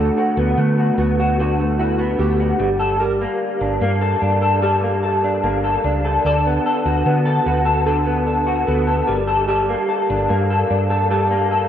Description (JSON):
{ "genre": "indie pop, bedroom pop", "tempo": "74 BPM", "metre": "4/4", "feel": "straight", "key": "D major", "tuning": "A4 = 440 Hz", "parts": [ { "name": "warbly lo-fi synth keys", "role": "melody", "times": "0.0-11.1 s", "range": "E4 to D5", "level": "-27 LUFS", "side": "right 3 dB", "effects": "wide subtle chorus, analog delay" }, { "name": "electric guitar through a small old amp", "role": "accompaniment", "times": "0.0-11.7 s", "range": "D3 to A4", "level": "-17 LUFS", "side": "left 1 dB", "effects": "ensemble chorus, warbly pitch drift" }, { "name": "hollow-body short-scale fingered electric bass", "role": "bass", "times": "0.0-11.7 s", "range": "G1 to D3", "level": "-21 LUFS", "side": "equal", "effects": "none" } ], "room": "moderate lush hall reverb, RT60 2.5 s", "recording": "rough home demo mix", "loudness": "-16 LUFS", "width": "side -9 dB against mid", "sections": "0.0-11.7 A section", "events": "none", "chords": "0.0 D6; 2.6 Gmadd9; 6.3 D6; 9.1 Gmadd9", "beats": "0.57 1.39 2.20 | 3.01 3.82 4.63 5.44 | 6.25 7.06 7.87 8.68 | 9.49 10.30 11.11" }